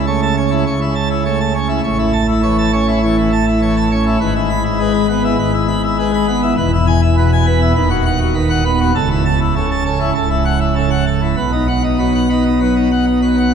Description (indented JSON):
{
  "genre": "classical, organ toccata",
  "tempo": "101 BPM",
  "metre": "4/4",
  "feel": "straight",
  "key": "A major, E major from 4.2 s",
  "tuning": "A4 = 440 Hz",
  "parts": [
    { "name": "pipe organ, plenum", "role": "solo", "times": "0.0-13.5 s", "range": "C#1 to B5", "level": "-13 LUFS", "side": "equal", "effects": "none" }
  ],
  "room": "wet church reverb, RT60 2.6 s",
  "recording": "minimal, uncompressed stereo recording",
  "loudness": "-13 LUFS",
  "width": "side -7 dB against mid",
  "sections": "0.0-13.5 A section",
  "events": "none",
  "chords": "0.0 A/C#; 1.8 A; 4.2 E/G#; 6.6 E; 7.8 B/D#; 9.0 A/C#; 10.2 F#m7/C#; 11.4 B",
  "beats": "0.06 0.65 1.24 | 1.83 2.43 3.02 3.61 | 4.21 4.80 5.38 5.98 | 6.57 7.17 7.76 8.36 | 8.96 9.55 10.15 10.76 | 11.38 12.00 12.61 13.23"
}